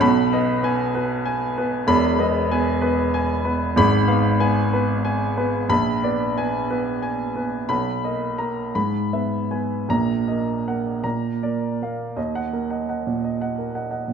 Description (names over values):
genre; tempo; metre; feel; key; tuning
classical, romantic character piece for solo piano; 51-64 BPM (dotted quarters); 6/8; rubato; Eb minor from 3.8 s; A4 = 441 Hz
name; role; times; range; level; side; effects
warm upright piano; solo; 0.0-14.1 s; E1 to B5; -20 LUFS; right 1 dB; none
room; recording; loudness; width
moderate scoring stage reverb, RT60 1.5 s; none; -20 LUFS; side -7 dB against mid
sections
0.0-12.2 A section; 12.2-14.1 B section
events
none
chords
0.0 G#m/B; 1.9 Emaj7; 3.8 Fdim/Ab; 5.7 Bb7b9; 7.7 Bmaj7; 8.7 E/G#; 9.9 Ebm/Bb; 11.0 Bb; 12.2 Ebm